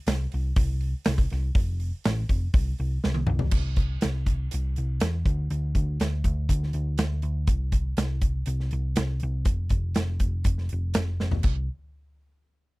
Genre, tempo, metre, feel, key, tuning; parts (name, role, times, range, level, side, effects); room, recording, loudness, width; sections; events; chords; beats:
classic rock; 121 BPM; 4/4; straight; A4 = 440 Hz
hollow-body short-scale picked electric bass; bass; 0.1-11.7 s; F1 to E2; -26 LUFS; equal
big rock drum kit; drums; 0.1-11.6 s; crash cymbal, hi-hat, kick drum, snare drum, toms; -24 LUFS; equal
little or no reverb; dry, close 1970s-style studio recording; -24 LUFS; side -22 dB against mid
0.0-3.5 A section; 3.5-11.4 B section; 11.4-12.8 C section
drum fill 3.0-3.5, 11.2
0.08 0.57 1.06 | 1.55 2.05 2.54 3.03 | 3.53 4.02 4.51 5.01 | 5.50 6.00 6.49 6.99 | 7.49 7.98 8.47 8.97 | 9.46 9.96 10.46 10.95 | 11.45